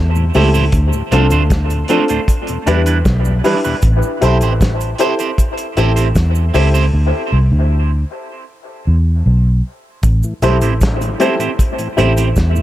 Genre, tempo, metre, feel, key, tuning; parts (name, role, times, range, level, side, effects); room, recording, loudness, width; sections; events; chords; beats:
dub reggae; 77 BPM; 4/4; straight; A minor; A4 = 441 Hz
vintage muted fingered electric bass; bass; 0.0-12.6 s; A1 to E2; -13 LUFS; equal
tonewheel organ; accompaniment; 0.2-3.7, 10.2-12.6 s; D2 to D4; -24 LUFS; left 2 dB; overdrive, slow rotary speaker, dub echo
cabasa; percussion; 0.2-12.6 s; -34 LUFS; right 9 dB
electric guitar at the edge of break-up; accompaniment; 0.3-12.3 s; G3 to C5; -21 LUFS; right 7 dB; phaser, dub echo
dark upright piano; stabs; 0.3-12.2 s; C4 to C5; -19 LUFS; left 2 dB; dub echo
cloth-damped thuddy drum kit; drums; 0.3-12.6 s; hi-hat, kick drum, snare drum; -18 LUFS; equal
light reverb, small room ambience; echo-heavy mix; -12 LUFS; side -14 dB against mid
0.0-12.6 A section
drums muted 6.9-10.0
0.0 Am7; 0.7 Dm7; 2.3 Em7; 3.8 Am7; 6.9 N.C.; 8.5 E5; 10.0 Am7
| 0.73 1.50 2.28 3.05 | 3.83 4.61 5.38 6.16 | 6.93 7.71 8.48 9.26 | 10.04 10.81 11.59 12.36